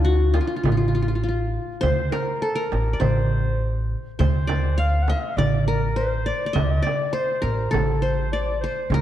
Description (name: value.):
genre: Arabic maqam ensemble.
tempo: 102 BPM.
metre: 4/4.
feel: straight.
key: D maqam saba.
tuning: A4 = 438 Hz.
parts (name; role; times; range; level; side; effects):
qanun; melody; 0.0-9.0 s; D4 to F5; -27 LUFS; left 1 dB; none.
mellow clarinet; second line; 0.0-9.0 s; F4 to F#5; -28 LUFS; left 2 dB; none.
upright bass; bass; 0.0-9.0 s; A1 to D2; -22 LUFS; equal; none.
darbuka; percussion; 0.2-9.0 s; none; -28 LUFS; right 2 dB; none.
frame drum; percussion; 0.3-9.0 s; none; -31 LUFS; right 7 dB; none.
room: moderate concert hall reverb, RT60 1.9 s.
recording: dark, warm production.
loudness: -20 LUFS.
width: side -12 dB against mid.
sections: 0.0-9.0 A section.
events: none.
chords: none.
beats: 0.05 0.64 1.24 | 1.83 2.42 3.01 3.60 | 4.19 4.78 5.37 5.96 | 6.56 7.15 7.74 8.33 | 8.92.